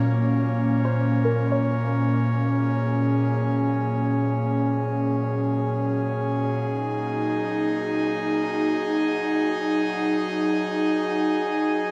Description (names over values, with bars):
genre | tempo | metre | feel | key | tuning
ambient | free time | none | none | unclear | A4 = 440 Hz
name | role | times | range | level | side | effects
airy breathy pad | sustained chords | 0.0-11.9 s | Bb2 to F5 | -24 LUFS | equal | chorus
analog drone | drone | 0.0-11.9 s | Gb3 to Gb4 | -39 LUFS | equal | chorus
soft round pluck | arpeggios | 0.8-2.7 s | Bb4 to Db5 | -34 LUFS | equal | analog chorus, delay
room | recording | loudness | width
wet cathedral reverb, RT60 6.8 s | none | -24 LUFS | mono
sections
0.0-11.9 A section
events
fade-in on synth drone 0.0-11.9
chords
0.0 Bbm7; 6.6 Ab5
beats
free time